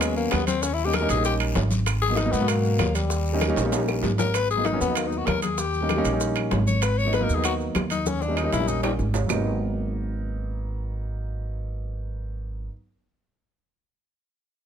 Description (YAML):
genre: Afro-Cuban jazz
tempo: 194 BPM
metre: 4/4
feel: straight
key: G# minor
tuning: A4 = 441 Hz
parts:
  - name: growling tenor saxophone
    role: second line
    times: 0.0-8.9 s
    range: G3 to C#5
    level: -26 LUFS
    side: left 6 dB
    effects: none
  - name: warm grand piano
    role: accompaniment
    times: 0.0-12.7 s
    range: B2 to F#4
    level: -28 LUFS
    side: right 1 dB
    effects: none
  - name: upright bass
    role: bass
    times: 0.0-12.7 s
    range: G#1 to G#2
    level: -26 LUFS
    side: right 1 dB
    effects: none
  - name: bongos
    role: percussion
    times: 0.0-9.4 s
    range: none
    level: -33 LUFS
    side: left 8 dB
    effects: none
  - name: claves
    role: percussion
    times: 0.0-9.4 s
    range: none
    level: -34 LUFS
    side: right 7 dB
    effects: none
  - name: congas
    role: percussion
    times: 0.0-9.4 s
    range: none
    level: -32 LUFS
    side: left 2 dB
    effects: none
  - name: guiro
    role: percussion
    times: 0.0-4.3 s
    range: none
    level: -38 LUFS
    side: left 6 dB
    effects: none
  - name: maracas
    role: percussion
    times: 0.0-9.4 s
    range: none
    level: -36 LUFS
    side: right 5 dB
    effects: none
  - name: timbales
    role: percussion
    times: 0.0-9.4 s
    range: none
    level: -32 LUFS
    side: right 10 dB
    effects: none
room: little or no reverb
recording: close, detailed microphones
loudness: -22 LUFS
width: side -8 dB against mid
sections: 0.0-9.3 A section; 9.3-11.8 B section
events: tenor saxophone solo 0.0-9.3; drum fill 3.6-4.3, 8.1-9.3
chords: 0.0 G#m7; 0.6 D#7; 1.9 G#m7; 3.1 D#7; 4.3 G#m7; 5.6 D#7; 6.8 G#m7; 8.1 D#7; 9.3 G#m7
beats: 0.01 0.32 | 0.63 0.94 1.25 1.56 | 1.87 2.18 2.48 2.79 | 3.10 3.41 3.72 4.03 | 4.34 4.65 4.96 5.27 | 5.58 5.89 6.20 6.51 | 6.82 7.13 7.44 7.75 | 8.06 8.37 8.68 8.99 | 9.30 9.61 9.92 10.23 | 10.54 10.85 11.16 11.47